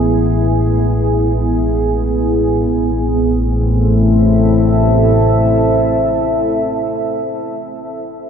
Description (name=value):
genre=dark ambient drone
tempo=free time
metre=none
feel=none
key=A harmonic minor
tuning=A4 = 440 Hz
part: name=deep dark ambient pad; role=sustained chords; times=0.0-7.8 s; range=B3 to E5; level=-15 LUFS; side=right 1 dB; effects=chorus, built-in reverb
part: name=analog drone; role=drone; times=0.0-7.2 s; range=A1 to A2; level=-15 LUFS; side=left 1 dB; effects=chorus
room=wet huge ambient reverb, RT60 8.7 s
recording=dreamy mix soaked in reverb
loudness=-12 LUFS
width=side -7 dB against mid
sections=0.0-2.7 A section; 2.7-7.9 B section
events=none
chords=0.0 E; 2.7 Am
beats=free time